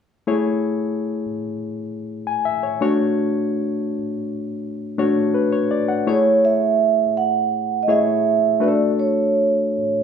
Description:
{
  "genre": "soul",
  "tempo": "83 BPM",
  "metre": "4/4",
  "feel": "straight",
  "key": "A major",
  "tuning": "A4 = 440 Hz",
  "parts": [
    { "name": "reed electric piano", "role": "accompaniment", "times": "0.3-10.0 s", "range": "A3 to G#5", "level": "-20 LUFS", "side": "left 3 dB", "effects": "none" },
    { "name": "vibraphone with soft mallets", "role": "melody", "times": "6.1-10.0 s", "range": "C#5 to F#5", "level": "-17 LUFS", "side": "right 5 dB", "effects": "none" }
  ],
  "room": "wet large studio reverb, RT60 0.8 s",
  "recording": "band playing live in one room",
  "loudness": "-18 LUFS",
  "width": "side -7 dB against mid",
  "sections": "0.3-6.1 A section; 6.1-10.0 B section",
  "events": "none",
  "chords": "0.3 Amaj7; 2.8 Dmaj7; 6.1 Amaj7; 8.6 Dmaj7"
}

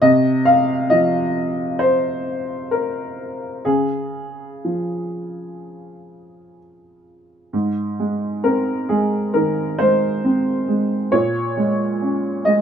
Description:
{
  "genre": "neoclassical minimalist piano",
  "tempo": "60-68 BPM",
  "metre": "4/4",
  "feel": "rubato",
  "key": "unclear",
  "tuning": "A4 = 440 Hz",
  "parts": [
    { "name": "dark upright piano", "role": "solo", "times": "0.0-12.6 s", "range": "Ab2 to F5", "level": "-17 LUFS", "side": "equal", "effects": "none" }
  ],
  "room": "light reverb",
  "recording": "minimal, uncompressed stereo recording",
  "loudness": "-17 LUFS",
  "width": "side -8 dB against mid",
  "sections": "0.0-7.5 A section; 7.5-12.6 B section",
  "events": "none",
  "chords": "0.0 F5/C; 3.7 Db; 7.5 Ab; 11.1 Bbm7"
}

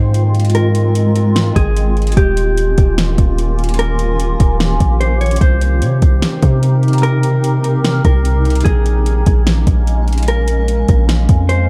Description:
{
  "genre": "hip hop, atmospheric cloud-rap",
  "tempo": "148 BPM",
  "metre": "4/4",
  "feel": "half-time",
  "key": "Ab major",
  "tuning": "A4 = 439 Hz",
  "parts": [
    { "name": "granular cloud pad", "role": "sustained chords", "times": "0.0-11.7 s", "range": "C3 to Bb4", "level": "-23 LUFS", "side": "equal", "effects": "built-in reverb, sidechain pumping" },
    { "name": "long sustained 808-style bass", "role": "bass", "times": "0.0-11.7 s", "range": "Eb1 to C3", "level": "-16 LUFS", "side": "equal", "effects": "none" },
    { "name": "smooth R&B drum kit", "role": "drums", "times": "0.1-11.6 s", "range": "hi-hat, kick drum, snare drum", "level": "-17 LUFS", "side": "equal", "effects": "none" },
    { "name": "mellow electric guitar", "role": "melody", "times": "0.5-11.7 s", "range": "G4 to Db5", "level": "-24 LUFS", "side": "equal", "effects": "warbly pitch drift, digital delay" }
  ],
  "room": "digital ambience",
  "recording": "none",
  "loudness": "-14 LUFS",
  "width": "mono",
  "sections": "0.0-11.7 A section",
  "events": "none",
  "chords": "0.0 Ab6; 2.2 Eb7; 5.4 Cm7; 8.7 Bbm7"
}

